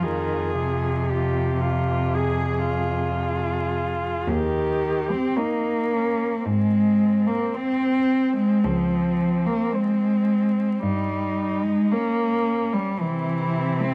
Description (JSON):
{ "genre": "classical, lyrical piece for cello ensemble", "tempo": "55 BPM", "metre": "4/4", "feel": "rubato", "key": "F minor", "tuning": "A4 = 440 Hz", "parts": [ { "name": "muted cello", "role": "melody", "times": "0.0-13.9 s", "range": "E4 to Db5", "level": "-34 LUFS", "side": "equal", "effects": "none" }, { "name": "muted cello", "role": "second line", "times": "0.0-13.9 s", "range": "C4 to Ab4", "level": "-31 LUFS", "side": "equal", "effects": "none" }, { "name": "muted cello", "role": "accompaniment", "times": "0.0-13.9 s", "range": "C3 to C4", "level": "-24 LUFS", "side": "equal", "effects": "none" }, { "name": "muted cello", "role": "bass", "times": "0.0-13.9 s", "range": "Db2 to C3", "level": "-31 LUFS", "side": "equal", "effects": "none" } ], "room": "light reverb", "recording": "close, detailed microphones, vinyl crackle", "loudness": "-23 LUFS", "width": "mono", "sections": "0.0-13.9 A section", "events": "none", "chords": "0.0 Fm; 4.3 Eb7; 6.5 Ab; 8.6 Db5; 10.8 Gdim; 13.0 C" }